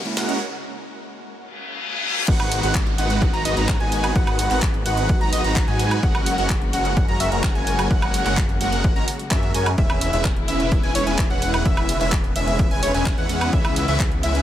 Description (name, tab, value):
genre	EDM, festival progressive house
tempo	128 BPM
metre	4/4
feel	straight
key	G# minor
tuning	A4 = 441 Hz
part	warm symphonic string section	sustained chords	0.0-14.4 s	C#3 to A#4	-31 LUFS	left 2 dB	sidechain pumping
part	riser, reverse cymbal and downlifter	sound effects	0.0-6.0 s	none	-28 LUFS	left 2 dB	none
part	house drum kit	drums	0.1-14.4 s	crash cymbal, handclaps, hi-hat, snare drum, woodblock	-28 LUFS	right 1 dB	high-pass filter on snare, high-pass filter on hats, high-pass filter on cymbals, high-pass filter on perc, high-pass filter on room
part	supersaw chords	riff	0.2-14.4 s	G#3 to A#5	-25 LUFS	right 1 dB	phaser, lush chorus, cassette tape, sidechain pumping, low-pass filter, dub echo
part	wide unison lead	arpeggios	2.3-14.4 s	C#5 to A#5	-26 LUFS	equal	sidechain pumping, dub echo
part	wide detuned saw bass	bass	2.3-14.4 s	E1 to G#2	-25 LUFS	equal	chorus, sidechain pumping
part	electronic kick drum	drums	2.3-14.1 s	none	-21 LUFS	equal	overdrive, high-pass filter on kick, high-pass filter on room
room	little or no reverb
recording	none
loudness	-18 LUFS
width	side -12 dB against mid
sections	0.0-2.3 A section; 2.3-14.4 B section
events	build-up 0.0-2.3; drum fill 0.0-0.4; riser 0.0-0.4; break 0.4-2.3; reverse cymbal 1.5-2.3; drop 2.3-14.4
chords	0.0 F#add9; 2.3 G#m7; 6.0 F#add9; 9.8 E6; 13.5 C#m7